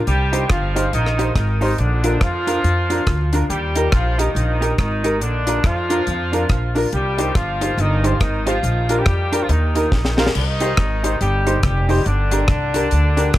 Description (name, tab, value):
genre	ska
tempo	140 BPM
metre	4/4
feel	swing 61% on 8ths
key	unclear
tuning	A4 = 440 Hz
part	clear horn section	melody	0.1-13.4 s	D3 to G4	-22 LUFS	equal	tape echo, plate reverb
part	upright bass	bass	0.1-13.4 s	F1 to F2	-20 LUFS	equal	none
part	deep reggae drum kit	drums	0.1-13.4 s	crash cymbal, hi-hat, kick drum, rim click, snare drum	-21 LUFS	equal	none
part	vintage hollow-body jazz guitar	accompaniment	0.3-13.4 s	D4 to C5	-26 LUFS	right 3 dB	plate reverb
part	warm upright piano	stabs	0.3-13.3 s	D4 to C5	-25 LUFS	left 2 dB	tape echo, plate reverb
room	light reverb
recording	none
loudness	-16 LUFS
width	side -14 dB against mid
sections	0.0-10.4 A section; 10.4-13.4 B section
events	drum fill 9.9-10.4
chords	0.1 Cm; 1.8 Bb; 3.5 Eb; 5.2 Bb; 6.9 Cm; 8.6 Bb; 9.5 Eb; 10.4 Cm; 12.1 Gm